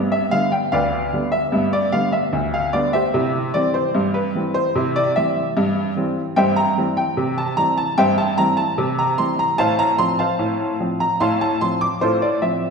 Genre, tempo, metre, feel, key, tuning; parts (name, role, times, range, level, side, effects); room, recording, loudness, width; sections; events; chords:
ragtime piano; 74 BPM; 2/4; straight; C major, F major from 6.4 s; A4 = 439 Hz
clear upright piano; solo; 0.0-12.7 s; D2 to D6; -17 LUFS; equal
wet scoring stage reverb, RT60 1.7 s; recorded in a church or concert hall; -17 LUFS; side -5 dB against mid
0.0-12.7 A section
0.0 G; 3.1 C/G; 9.6 F/A